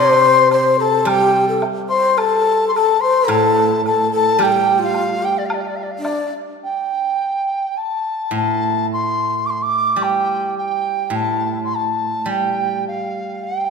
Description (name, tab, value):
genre	chinese traditional, Chinese chamber ensemble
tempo	108 BPM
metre	2/4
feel	rubato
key	unclear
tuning	A4 = 440 Hz
part	mellow large dizi	melody	0.0-13.7 s	D5 to D6	-17 LUFS	left 1 dB	none
part	breathy low xiao	second line	0.0-6.3 s	D4 to C5	-18 LUFS	left 3 dB	none
part	steel-string zither	accompaniment	0.0-6.0, 8.3-13.7 s	A2 to G3	-23 LUFS	right 3 dB	none
part	woodblock	percussion	0.5-6.2 s	none	-28 LUFS	left 2 dB	none
room	wet scoring stage reverb, RT60 2.2 s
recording	minimal, uncompressed stereo recording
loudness	-15 LUFS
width	side -5 dB against mid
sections	0.0-6.6 A section; 6.6-13.7 B section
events	none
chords	none